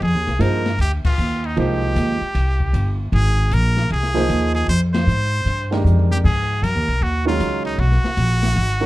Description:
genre	modal jazz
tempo	154 BPM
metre	4/4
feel	swing 64% on 8ths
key	unclear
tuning	A4 = 441 Hz
part	trumpet with straight mute	melody	0.0-8.9 s	Eb4 to C5	-23 LUFS	equal	none
part	upright bass	bass	0.0-8.9 s	G1 to Ab2	-18 LUFS	equal	none
part	open jazz drum kit	drums	0.0-8.7 s	crash cymbal, hi-hat, kick drum, ride cymbal, snare drum, toms	-27 LUFS	left 2 dB	none
part	warm grand piano	accompaniment	0.4-8.9 s	Eb3 to C5	-22 LUFS	right 3 dB	none
room	light reverb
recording	dark, warm production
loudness	-16 LUFS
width	side -17 dB against mid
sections	0.0-8.9 A section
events	band accent 1.0, 4.9; drum fill 5.8-6.2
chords	0.0 Fm9; 6.2 Abm9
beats	| 0.01 0.40 0.79 1.18 | 1.57 1.96 2.35 2.74 | 3.13 3.52 3.90 4.29 | 4.68 5.07 5.46 5.85 | 6.24 6.62 7.01 7.40 | 7.79 8.18 8.56

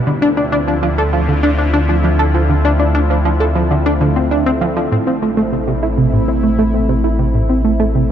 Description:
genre	ambient, sequencer-driven space music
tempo	99 BPM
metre	4/4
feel	straight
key	unclear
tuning	A4 = 438 Hz
part	sweeping resonant pad	sustained chords	0.0-8.1 s	D3 to F4	-20 LUFS	equal	chorus
part	warm sub bass	bass	0.0-8.1 s	A1 to D2	-17 LUFS	equal	none
part	tight sequenced synth	riff	0.1-8.0 s	A2 to A4	-15 LUFS	right 1 dB	chorus, ping-pong delay
room	wet huge ambient reverb, RT60 7.9 s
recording	dark, warm production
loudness	-12 LUFS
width	side -9 dB against mid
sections	0.0-8.1 A section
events	none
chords	0.1 Dm7; 4.9 Am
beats	| 0.07 0.68 1.28 1.89 | 2.49 3.10 3.71 4.31 | 4.92 5.52 6.13 6.74 | 7.34 7.95

